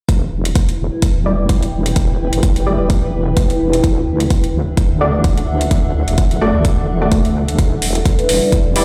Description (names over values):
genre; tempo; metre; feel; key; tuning
bass house; 128 BPM; 4/4; swing 56% on 16ths; E minor; A4 = 440 Hz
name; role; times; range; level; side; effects
wobble bass; bass; 0.1-8.8 s; E1 to D2; -20 LUFS; equal; chorus, tube saturation, sidechain pumping
electronic hi-hat; drums; 0.1-8.8 s; none; -27 LUFS; equal; small room reverb
electronic kick drum; drums; 0.1-8.6 s; none; -17 LUFS; equal; small room reverb
granular cloud pad; texture; 0.7-8.8 s; D4 to G5; -25 LUFS; equal; built-in reverb, sidechain pumping
orchestra-hit-like synth stab; stabs; 1.3-8.8 s; G3 to D5; -22 LUFS; equal; built-in reverb, cassette tape, sidechain pumping, dub echo
dark analog pad; sustained chords; 7.8-8.8 s; G3 to D5; -26 LUFS; equal; chorus, sidechain pumping
vibraphone with soft mallets; melody; 8.0-8.8 s; A4 to B4; -20 LUFS; equal; dub echo
room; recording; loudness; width
light reverb, digital ambience; played on a big sound system in a bare room, large studio reverb; -16 LUFS; mono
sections
0.1-8.8 A section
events
filter sweep on synth stab 0.1-8.8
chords
0.1 Em7; 3.8 D; 7.6 Em7